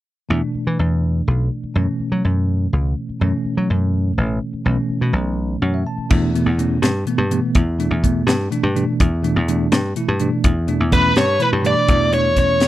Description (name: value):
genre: electric jazz fusion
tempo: 83 BPM (dotted quarters)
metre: 6/8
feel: straight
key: E dorian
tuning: A4 = 440 Hz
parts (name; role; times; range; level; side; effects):
- bell-like tine electric piano; accompaniment; 0.3-12.7 s; B2 to B5; -21 LUFS; equal; fast stereo tremolo
- dry thumbed slap bass; bass; 0.3-12.7 s; A1 to F#3; -19 LUFS; equal; none
- crisp fusion drum kit; drums; 6.1-12.7 s; crash cymbal, hi-hat, kick drum, snare drum; -19 LUFS; equal; none
- bluesy overdriven lead guitar; melody; 10.9-12.7 s; B4 to D5; -17 LUFS; right 1 dB; distortion
- breathy mellow jazz flute; second line; 10.9-12.7 s; B5 to D6; -23 LUFS; left 6 dB; none
room: small room ambience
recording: dry, close 1970s-style studio recording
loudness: -16 LUFS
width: side -14 dB against mid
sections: 0.3-6.1 A section; 6.1-11.9 B section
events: tine electric piano fill 5.4-6.1, 11.2-11.9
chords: 0.3 E7sus4; 1.8 F#m7; 3.2 A69; 4.7 B9sus4; 6.1 Em7; 11.9 E7sus4